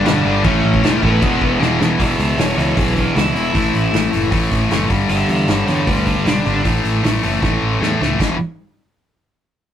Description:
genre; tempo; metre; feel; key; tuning
punk rock; 155 BPM; 4/4; straight; unclear; A4 = 440 Hz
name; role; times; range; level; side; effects
crunchy overdriven guitar; melody; 0.0-6.6 s; B3 to E5; -22 LUFS; equal; none
distorted electric guitar; riff; 0.0-8.4 s; E2 to A3; -19 LUFS; left 4 dB; overdrive
high-gain distorted guitar; riff; 0.0-2.0 s; G2 to E4; -24 LUFS; left 1 dB; distortion
sludgy distorted guitar; riff; 0.0-8.4 s; E2 to A3; -21 LUFS; right 4 dB; overdrive
modern bright picked electric bass; bass; 0.1-8.4 s; E1 to E2; -21 LUFS; equal; none
loose indie drum kit; drums; 0.1-8.3 s; crash cymbal, hi-hat, kick drum, snare drum, splash cymbal; -21 LUFS; equal; none
room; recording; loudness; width
moderate booth ambience, RT60 0.3 s; rough rehearsal-room recording, tube saturation; -14 LUFS; side -10 dB against mid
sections
0.0-2.0 A section; 2.0-8.2 B section; 8.2-9.7 C section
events
drum fill 1.6-2.0, 7.4-8.2; overdriven electric guitar solo 2.0-8.2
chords
0.4 A; 1.2 E; 3.5 A5; 4.9 G5; 6.6 A5; 8.2 E5

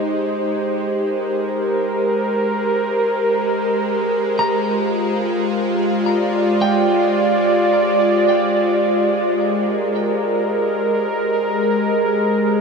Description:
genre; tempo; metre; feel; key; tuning
ambient; 54 BPM; 4/4; straight; unclear; A4 = 441 Hz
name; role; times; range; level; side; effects
warm analog pad; sustained chords; 0.0-12.6 s; Ab3 to D5; -17 LUFS; equal; chorus
bowed-like drone; drone; 0.0-12.6 s; Ab3; -24 LUFS; right 1 dB; built-in reverb
clean electric guitar; arpeggios; 4.4-9.4 s; G5 to Bb5; -27 LUFS; left 1 dB; ping-pong delay
room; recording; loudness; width
wet huge ambient reverb, RT60 8.7 s; cassette tape; -16 LUFS; side -5 dB against mid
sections
0.0-12.6 A section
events
none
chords
0.0 Abmaj9; 4.4 Bb13/Ab

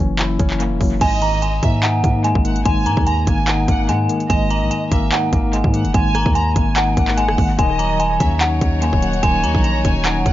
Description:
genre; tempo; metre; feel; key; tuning
hip hop, trap; 146 BPM; 4/4; half-time; unclear; A4 = 442 Hz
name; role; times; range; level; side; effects
tine electric piano; accompaniment; 0.0-10.3 s; G#2 to E4; -21 LUFS; left 3 dB; medium tremolo, analog delay
long sustained 808-style bass; bass; 0.0-10.3 s; D#1 to G#2; -20 LUFS; equal; none
trap drum kit; drums; 0.2-10.3 s; crash cymbal, handclaps, hi-hat, kick drum, rim click; -20 LUFS; equal; none
dark detuned synth bell; melody; 1.0-10.3 s; F#5 to A#5; -21 LUFS; right 1 dB; chorus, phaser, analog delay
warm studio violin section; second line; 1.0-10.3 s; D#5 to A#5; -26 LUFS; right 1 dB; analog delay
rich chamber string section; sustained chords; 7.6-10.3 s; F#3 to C#5; -27 LUFS; left 2 dB; none
room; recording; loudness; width
little or no reverb; echo-heavy mix, nothing above 7.5 kHz; -14 LUFS; side -14 dB against mid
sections
0.0-1.0 A section; 1.0-10.3 B section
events
none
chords
0.0 F#7; 1.0 G#sus2; 7.6 D#m7

